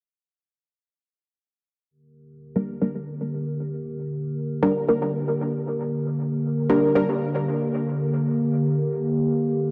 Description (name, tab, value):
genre	techno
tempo	free time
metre	none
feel	none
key	G minor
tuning	A4 = 440 Hz
part	warbly tape-like pad	sustained chords	2.6-9.7 s	D3 to Bb4	-27 LUFS	equal	chorus, built-in reverb
part	filtered dub chord stab	stabs	2.6-7.0 s	G3 to Bb4	-26 LUFS	equal	chorus, phaser, dub echo
room	moderate lush hall reverb, RT60 2.8 s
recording	dark, warm production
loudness	-24 LUFS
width	mono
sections	1.9-9.7 A section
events	filter sweep on synth stab 1.9-9.7; filter sweep on ambient pad 1.9-9.7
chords	1.9 Gm